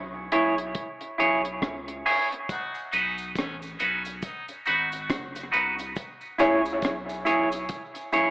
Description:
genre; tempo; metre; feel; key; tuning
dub reggae; 69 BPM; 4/4; swing 60% on 16ths; C# minor; A4 = 440 Hz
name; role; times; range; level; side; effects
warm sub bass; bass; 0.0-8.3 s; F#1 to C#2; -42 LUFS; equal; none
clean electric guitar; accompaniment; 0.3-8.3 s; D#4 to C#5; -25 LUFS; right 1 dB; high-pass filter, dub echo
deep reggae drum kit; drums; 0.3-8.3 s; hi-hat, kick drum, rim click; -34 LUFS; equal; dub echo
clear horn section; second line; 2.5-5.0 s; C#3 to F#4; -36 LUFS; left 1 dB; high-pass filter, dub echo
cabasa; percussion; 2.5-8.3 s; none; -48 LUFS; equal; high-pass filter on perc, dub echo
warm upright piano; stabs; 2.9-6.6 s; D#4 to C#5; -29 LUFS; left 1 dB; high-pass filter, dub echo
room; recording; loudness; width
moderate spring reverb, RT60 2.3 s; echo-heavy mix, AM radio sound; -24 LUFS; side -22 dB against mid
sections
0.0-8.3 A section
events
break 0.0-2.5; filter sweep 0.0-6.0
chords
0.0 C#m; 2.5 B; 6.0 C#m

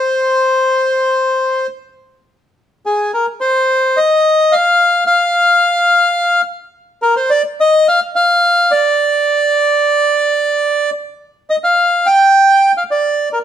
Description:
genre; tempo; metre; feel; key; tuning
tango; 107 BPM; 4/4; rubato; C minor; A4 = 440 Hz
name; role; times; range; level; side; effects
bandoneon; solo; 0.0-13.4 s; Ab4 to G5; -11 LUFS; equal; none
room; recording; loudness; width
moderate stone room reverb, RT60 1.0 s; band playing live in one room; -11 LUFS; side -10 dB against mid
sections
0.0-2.3 A section; 2.3-13.4 B section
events
none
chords
none

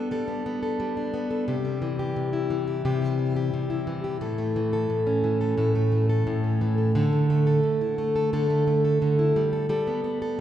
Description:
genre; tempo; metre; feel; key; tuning
pop; 88 BPM; 4/4; straight; unclear; A4 = 440 Hz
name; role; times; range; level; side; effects
fingerpicked plugged-in steel-string acoustic guitar; solo; 0.0-10.4 s; A2 to A4; -22 LUFS; equal; none
room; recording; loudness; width
wet church reverb, RT60 2.5 s; recorded in a church or concert hall; -22 LUFS; side -11 dB against mid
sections
0.0-10.4 A section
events
none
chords
0.0 Gadd9; 1.5 C; 4.2 A; 7.0 Dsus2; 9.4 Gadd9

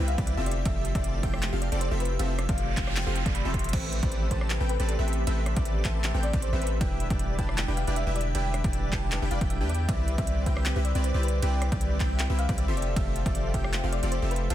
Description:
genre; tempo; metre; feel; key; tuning
future bass; 156 BPM; 4/4; swing 54% on 16ths, half-time; A minor; A4 = 440 Hz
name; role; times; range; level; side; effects
airy breathy pad; sustained chords; 0.0-14.5 s; C3 to G4; -41 LUFS; right 1 dB; chorus, sidechain pumping
airy dreamy lead; arpeggios; 0.0-14.5 s; D5 to A5; -42 LUFS; left 1 dB; chorus, sidechain pumping, digital delay
supersaw stab; riff; 0.0-14.5 s; C4 to A5; -34 LUFS; equal; sidechain pumping
long sustained 808-style bass; bass; 0.0-14.5 s; E1 to E2; -28 LUFS; equal; sidechain pumping
thumb-piano-like synth pluck; melody; 0.1-14.5 s; G4 to C6; -36 LUFS; left 2 dB; lush chorus, sidechain pumping, dub echo
trap drum kit; drums; 0.1-14.5 s; crash cymbal, handclaps, hi-hat, ride cymbal, rim click; -35 LUFS; right 1 dB; none
electronic kick drum; drums; 0.2-13.6 s; none; -30 LUFS; equal; overdrive
noise sweep; sound effects; 2.6-3.7 s; none; -38 LUFS; right 5 dB; none
concert harp; arpeggios; 3.7-14.5 s; G4 to G5; -43 LUFS; left 3 dB; sidechain pumping, digital delay
room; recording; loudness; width
little or no reverb; dense, heavily limited modern master; -25 LUFS; side -12 dB against mid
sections
0.0-14.5 A section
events
noise sweep 2.6-3.7; drum fill 3.5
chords
0.5 Fmaj9; 3.7 Am9; 6.8 Em7; 9.9 Cmaj9; 12.8 Fmaj9

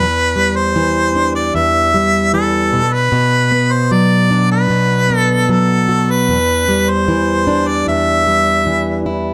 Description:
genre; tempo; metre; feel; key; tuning
pop; 76 BPM; 4/4; straight; E minor; A4 = 440 Hz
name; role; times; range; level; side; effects
warm harmonica; melody; 0.0-9.0 s; A4 to E5; -17 LUFS; equal; none
fingerpicked plugged-in steel-string acoustic guitar; accompaniment; 0.0-9.3 s; E2 to F#4; -17 LUFS; equal; none
room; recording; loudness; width
light reverb; dark, warm production; -14 LUFS; mono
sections
0.0-9.3 A section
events
none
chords
0.0 Em7; 2.7 Bm; 6.3 Em7

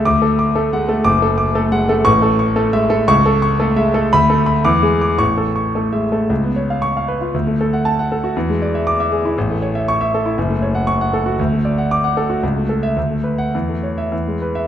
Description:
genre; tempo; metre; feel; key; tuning
classical, virtuoso piano study; 101-122 BPM; 2/4; rubato; A major; A4 = 440 Hz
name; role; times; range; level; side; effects
warm concert grand piano; solo; 0.0-14.7 s; F#1 to D6; -14 LUFS; equal; none
room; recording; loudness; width
moderate recital hall reverb, RT60 1.6 s; none; -14 LUFS; side -10 dB against mid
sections
0.0-6.3 A section; 6.3-14.7 B section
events
none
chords
0.1 D; 1.1 D/F#; 2.1 A; 3.1 A/C#; 4.1 Bm7/D; 4.7 E7; 5.2 A; 6.3 C#7; 7.3 D; 8.3 E7; 9.4 A; 10.4 F#m; 11.4 D; 12.4 A/C#; 13.0 Bm7/D; 13.5 A/E; 14.1 E

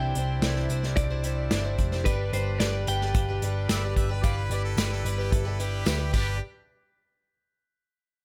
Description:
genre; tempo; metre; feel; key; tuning
folk rock and heartland rock; 110 BPM; 4/4; straight; G major; A4 = 440 Hz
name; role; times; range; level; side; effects
clean electric guitar; melody; 0.0-5.8 s; B4 to G5; -36 LUFS; equal; slapback echo, plate reverb
picked twelve-string acoustic guitar; accompaniment; 0.0-6.4 s; C3 to C5; -37 LUFS; equal; plate reverb
warm grand piano; accompaniment; 0.0-6.4 s; E4 to F5; -42 LUFS; equal; plate reverb
accordion; sustained chords; 0.0-6.4 s; G3 to B4; -42 LUFS; equal; none
hollow-body short-scale picked electric bass; bass; 0.0-6.4 s; F1 to D2; -30 LUFS; equal; none
unplugged drum kit; drums; 0.2-6.3 s; crash cymbal, hi-hat, kick drum, snare drum; -30 LUFS; equal; none
tambourine; percussion; 2.6-6.4 s; none; -44 LUFS; equal; none
clear harmonica; second line; 3.7-6.4 s; G4 to E5; -39 LUFS; equal; none
room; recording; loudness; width
little or no reverb; none; -27 LUFS; mono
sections
0.0-6.4 A section; 6.4-8.2 B section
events
none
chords
0.0 Cadd9; 2.1 G; 6.4 N.C.

